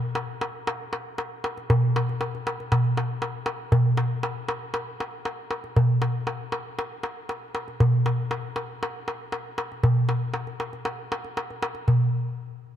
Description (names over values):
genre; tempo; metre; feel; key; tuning
greek folk; 118 BPM; 4/4; straight; none; none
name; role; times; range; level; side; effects
darbuka; percussion; 0.2-12.1 s; none; -24 LUFS; equal; none
room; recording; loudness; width
moderate plate reverb, RT60 2.4 s; dark, warm production; -24 LUFS; side -10 dB against mid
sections
0.0-11.9 A section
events
none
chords
none